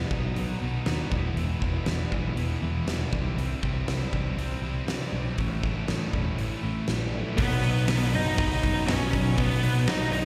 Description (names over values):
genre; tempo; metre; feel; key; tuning
quiet-loud alternative rock; 120 BPM; 4/4; straight; unclear; A4 = 439 Hz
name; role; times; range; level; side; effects
clean electric guitar; arpeggios; 0.0-7.4 s; E2 to F#4; -41 LUFS; equal; none
high-gain distorted guitar; riff; 0.0-10.2 s; A2 to E4; -39 LUFS; equal; distortion
sludgy distorted guitar; riff; 0.0-10.2 s; E2 to D#4; -37 LUFS; equal; overdrive
overdriven picked electric bass; bass; 0.0-10.2 s; E1 to C3; -31 LUFS; equal; none
huge arena drum kit; drums; 0.1-10.2 s; hi-hat, kick drum, snare drum; -33 LUFS; equal; none
octave-fuzz lead guitar; melody; 7.4-10.2 s; B3 to D#5; -31 LUFS; equal; distortion, slapback echo
overdriven electric guitar; riff; 7.4-10.2 s; B2 to B3; -38 LUFS; equal; none
room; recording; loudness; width
small room ambience; live gig heard through the venue's PA, recital hall reverb; -27 LUFS; mono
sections
0.0-7.4 A section; 7.4-10.2 B section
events
none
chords
0.1 B; 1.1 E; 3.1 C; 5.4 A; 7.4 B